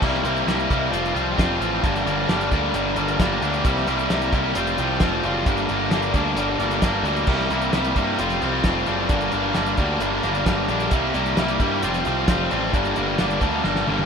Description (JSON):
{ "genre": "indie rock", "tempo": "132 BPM", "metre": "4/4", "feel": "straight", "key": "G dorian", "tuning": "A4 = 436 Hz", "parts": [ { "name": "cranked stack guitar", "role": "riff", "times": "0.0-14.1 s", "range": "G2 to F4", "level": "-21 LUFS", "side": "equal", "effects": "overdrive" }, { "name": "fuzz picked electric bass", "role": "bass", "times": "0.0-14.1 s", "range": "F1 to G2", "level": "-28 LUFS", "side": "equal", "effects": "overdrive" }, { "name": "cloth-damped thuddy drum kit", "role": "drums", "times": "0.0-14.1 s", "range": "crash cymbal, hi-hat, kick drum, snare drum, toms", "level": "-24 LUFS", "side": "equal", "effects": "none" } ], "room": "moderate studio reverb, RT60 0.5 s", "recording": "rough home demo mix", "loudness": "-19 LUFS", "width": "side -6 dB against mid", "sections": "0.0-14.1 A section", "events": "drum fill 13.6-14.1", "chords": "0.0 C5; 0.9 Fsus2; 1.8 Gm; 3.6 C5; 4.6 Fsus2; 5.5 Gm; 7.3 C5; 8.2 Fsus2; 9.1 Gm; 10.9 C5; 11.8 Fsus2; 12.7 Gm" }